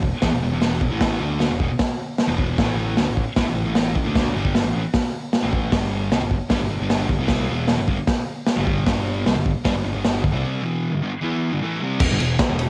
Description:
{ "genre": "garage rock duo or trio", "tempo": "153 BPM", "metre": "4/4", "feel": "straight", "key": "unclear", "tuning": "A4 = 440 Hz", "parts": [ { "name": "fuzz guitar", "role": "riff", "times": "0.0-12.7 s", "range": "E2 to E4", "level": "-26 LUFS", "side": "equal", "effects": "distortion, cassette tape" }, { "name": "growling picked electric bass", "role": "bass", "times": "0.0-12.7 s", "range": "E1 to A2", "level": "-29 LUFS", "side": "equal", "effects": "overdrive" }, { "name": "crunchy breakbeat drum kit", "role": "drums", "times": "0.0-12.7 s", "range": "crash cymbal, hi-hat, kick drum, ride cymbal, snare drum", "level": "-24 LUFS", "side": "equal", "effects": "cassette tape" } ], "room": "light reverb, small room ambience", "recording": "home recording on cassette, lossy compression artefacts", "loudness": "-22 LUFS", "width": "mono", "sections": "0.0-12.0 A section", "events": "break 10.4-12.0", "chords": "0.0 E5; 2.6 A5; 5.7 G5; 12.0 Em", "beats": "0.23 0.62 | 1.01 1.41 1.80 2.19 | 2.58 2.98 3.37 3.76 | 4.15 4.54 4.94 5.33 | 5.72 6.11 6.51 6.90 | 7.29 7.68 8.08 8.47 | 8.86 9.26 9.65 10.04 | 10.43 10.83 11.22 11.61 | 12.00 12.39" }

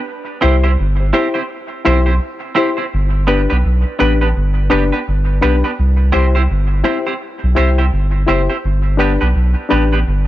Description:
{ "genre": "reggae", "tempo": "84 BPM", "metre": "4/4", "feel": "swing 61% on 16ths", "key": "G major", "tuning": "A4 = 441 Hz", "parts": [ { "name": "semi-hollow electric guitar", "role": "accompaniment", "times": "0.4-10.0 s", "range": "B3 to C5", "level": "-20 LUFS", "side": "right 4 dB", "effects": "wide subtle chorus, dub echo" }, { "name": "reed electric piano", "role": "stabs", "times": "0.4-10.0 s", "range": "D4 to C5", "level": "-20 LUFS", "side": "left 5 dB", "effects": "none" }, { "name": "soft dub sub bass", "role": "bass", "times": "0.4-10.3 s", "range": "F#1 to C2", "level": "-14 LUFS", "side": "equal", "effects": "none" } ], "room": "little or no reverb", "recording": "echo-heavy mix", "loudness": "-13 LUFS", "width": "side -14 dB against mid", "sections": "0.0-2.9 A section; 2.9-10.3 B section", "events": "none", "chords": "0.1 C; 2.9 G; 5.8 C; 8.6 G", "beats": "| 0.07 0.78 1.49 2.21 | 2.92 3.63 4.34 5.06 | 5.77 6.48 7.20 7.91 | 8.62 9.34 10.05" }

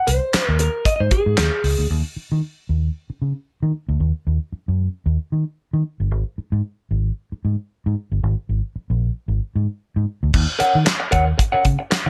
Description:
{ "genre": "funk", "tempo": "114 BPM", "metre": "4/4", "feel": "swing 56% on 16ths", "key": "Eb dorian", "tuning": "A4 = 441 Hz", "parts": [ { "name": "electric guitar through a small old amp", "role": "accompaniment", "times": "0.0-1.9, 10.6-12.1 s", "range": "Ab4 to Gb5", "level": "-23 LUFS", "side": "equal", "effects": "none" }, { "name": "vintage muted fingered electric bass", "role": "bass", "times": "0.1-12.1 s", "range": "G1 to Eb3", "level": "-22 LUFS", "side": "equal", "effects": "none" }, { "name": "damped 70s drum kit", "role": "drums", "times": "0.1-1.8, 10.3-12.1 s", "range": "crash cymbal, handclaps, hi-hat, kick drum, snare drum", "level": "-22 LUFS", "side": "equal", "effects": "none" } ], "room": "light reverb", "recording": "lossy compression artefacts", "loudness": "-21 LUFS", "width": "mono", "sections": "0.0-1.9 A section; 1.9-10.3 B section; 10.3-12.1 C section", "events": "clean electric guitar solo 0.0-1.9", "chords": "0.0 Ab; 1.9 N.C.; 10.3 Ebm7", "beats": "0.33 0.86 1.38 | 1.90 2.43 2.95 3.48 | 4.01 4.53 5.06 5.59 | 6.11 6.64 7.17 7.70 | 8.22 8.75 9.28 9.81 | 10.33 10.86 11.39 11.91" }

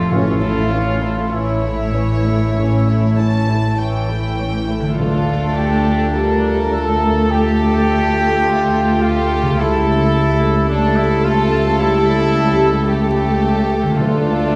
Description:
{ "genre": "classical, slow romantic movement for symphony orchestra", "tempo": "48-55 BPM", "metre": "4/4", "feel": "rubato", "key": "unclear", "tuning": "A4 = 440 Hz", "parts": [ { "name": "warm symphonic violin section", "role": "melody", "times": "0.0-14.6 s", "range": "A4 to A5", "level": "-29 LUFS", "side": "equal", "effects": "none" }, { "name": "warm symphonic violin section", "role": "second line", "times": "0.0-14.6 s", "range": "C#4 to A4", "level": "-26 LUFS", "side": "equal", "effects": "none" }, { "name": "dark symphonic viola section", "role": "accompaniment", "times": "0.0-14.6 s", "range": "E3 to A3", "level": "-25 LUFS", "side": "equal", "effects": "none" }, { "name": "concert harp", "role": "arpeggios", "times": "0.0-14.6 s", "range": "A2 to A4", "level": "-28 LUFS", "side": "equal", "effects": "none" }, { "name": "clear trumpet section", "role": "stabs", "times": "0.0-14.6 s", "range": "D4 to A4", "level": "-23 LUFS", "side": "equal", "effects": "none" }, { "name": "mellow French horn section", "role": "sustained chords", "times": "0.1-14.6 s", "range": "A3 to G4", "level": "-25 LUFS", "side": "equal", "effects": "none" }, { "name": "dark chamber cello section", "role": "bass", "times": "0.1-14.6 s", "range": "C#2 to A2", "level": "-23 LUFS", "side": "equal", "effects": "none" }, { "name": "rich studio double bass section", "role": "bass", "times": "0.1-14.6 s", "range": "A1 to D2", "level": "-24 LUFS", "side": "equal", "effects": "none" }, { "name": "timpani", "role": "percussion", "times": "0.1-14.6 s", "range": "A2 to D3", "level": "-27 LUFS", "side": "equal", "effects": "none" } ], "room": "wet scoring stage reverb, RT60 1.7 s", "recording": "heard from further back in the room, vinyl crackle", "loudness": "-16 LUFS", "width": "mono", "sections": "0.0-14.6 A section", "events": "none", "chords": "0.1 A; 5.0 Dm; 9.6 A7/C#; 14.0 Dm", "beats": "| 0.11 1.33 2.57 3.80 | 4.98 6.15 7.32 8.46 | 9.60 10.70 11.80 12.91 | 14.00" }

